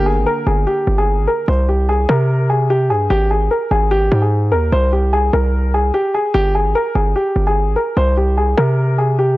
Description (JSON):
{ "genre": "hip hop, trap", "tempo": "148 BPM", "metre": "4/4", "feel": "half-time", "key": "unclear", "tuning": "A4 = 440 Hz", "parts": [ { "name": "dark baby grand piano", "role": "melody", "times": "0.0-9.4 s", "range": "G4 to C5", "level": "-17 LUFS", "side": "left 1 dB", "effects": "analog delay" }, { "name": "dark concert grand piano", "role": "accompaniment", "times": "0.0-1.5 s", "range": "D3 to Bb4", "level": "-26 LUFS", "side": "equal", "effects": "none" }, { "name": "hard-hitting 808-style bass", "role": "bass", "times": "0.0-9.4 s", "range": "G1 to C3", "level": "-16 LUFS", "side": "equal", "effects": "none" } ], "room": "studio ambience", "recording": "dry, gritty hardware recording, transformer saturation", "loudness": "-13 LUFS", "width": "side -18 dB against mid", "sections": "0.0-1.5 A section; 1.5-9.4 B section", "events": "none", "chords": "0.0 Gm; 1.5 C5; 3.1 Ab5; 4.7 Abmaj9/C; 6.3 Gm; 8.0 C5" }